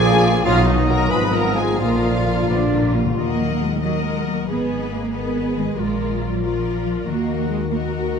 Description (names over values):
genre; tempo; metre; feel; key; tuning
classical; 86-96 BPM (dotted quarters); 6/8; rubato; Eb minor; A4 = 440 Hz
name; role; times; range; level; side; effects
warm symphonic violin section; melody; 0.0-8.2 s; D5 to Cb6; -30 LUFS; left 5 dB; none
clear oboe; second line; 0.0-2.9 s; D5 to D#5; -29 LUFS; equal; none
mellow clarinet; second line; 0.0-2.9 s; D#4 to Cb5; -30 LUFS; left 2 dB; none
mellow hollow small flute group; second line; 0.0-2.9 s; B4 to Ab5; -29 LUFS; equal; none
rich studio violin section; second line; 0.0-8.2 s; Bb3 to Eb5; -30 LUFS; left 4 dB; none
clear symphonic viola section; accompaniment; 0.0-8.2 s; D#4 to Cb5; -27 LUFS; right 1 dB; none
mellow bassoon; accompaniment; 0.0-2.9 s; F3 to F#3; -29 LUFS; right 2 dB; none
mellow French horn section; sustained chords; 0.0-3.0 s; Bb3 to F4; -28 LUFS; left 4 dB; none
warm trombone section; sustained chords; 0.0-2.9 s; D3 to F#3; -28 LUFS; right 5 dB; none
concert harp; arpeggios; 0.0-8.2 s; Ab2 to Cb5; -26 LUFS; left 9 dB; none
dark trumpet; stabs; 0.0-2.9 s; D#4 to Cb5; -26 LUFS; right 2 dB; none
rich symphonic double bass section; bass; 0.0-8.2 s; Ab1 to Eb2; -26 LUFS; right 2 dB; none
warm symphonic cello section; bass; 0.0-7.8 s; Ab2 to D4; -23 LUFS; right 3 dB; none
timpani; percussion; 1.8-3.8 s; Bb2 to Eb3; -26 LUFS; left 1 dB; none
room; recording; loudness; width
moderate scoring stage reverb, RT60 1.6 s; dark, warm production; -17 LUFS; side -6 dB against mid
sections
0.0-3.2 A section; 3.2-8.2 B section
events
timpani fill 1.8-3.2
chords
0.5 B; 1.1 Fm7b5/Ab; 1.8 Bb; 3.2 Ebm; 4.5 Abm; 5.8 Bb; 7.1 Ebm